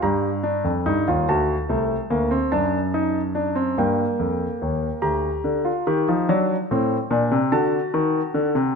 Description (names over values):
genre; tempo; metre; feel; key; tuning
classical, baroque-style 3-part fugue for grand piano; 48 BPM (dotted quarters); 6/8; straight; G minor from 5.0 s; A4 = 445 Hz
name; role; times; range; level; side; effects
warm concert grand piano; solo; 0.0-8.8 s; C2 to Bb5; -19 LUFS; equal; none
room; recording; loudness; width
moderate scoring stage reverb, RT60 1.7 s; close, detailed microphones; -20 LUFS; side -5 dB against mid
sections
0.0-5.0 A section; 5.0-8.8 B section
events
none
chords
0.0 Gm; 1.3 D; 2.5 D7/F#; 3.8 Gm; 5.0 Gm/D; 6.3 D; 7.5 D7